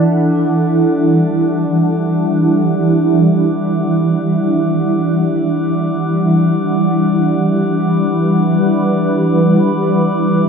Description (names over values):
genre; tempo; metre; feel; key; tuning
ambient; free time; none; none; E minor; A4 = 440 Hz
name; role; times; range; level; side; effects
shimmering ambient pad; sustained chords; 0.0-10.5 s; E3 to F#5; -12 LUFS; equal; chorus, built-in reverb, phaser
glass harmonica; texture; 0.0-10.5 s; D6; -29 LUFS; left 1 dB; none
room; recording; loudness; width
wet huge ambient reverb, RT60 7.9 s; dark, warm production; -12 LUFS; side -6 dB against mid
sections
0.1-10.5 A section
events
fade-in on glass harmonica 0.1-10.5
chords
0.1 Em7; 6.9 G/E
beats
free time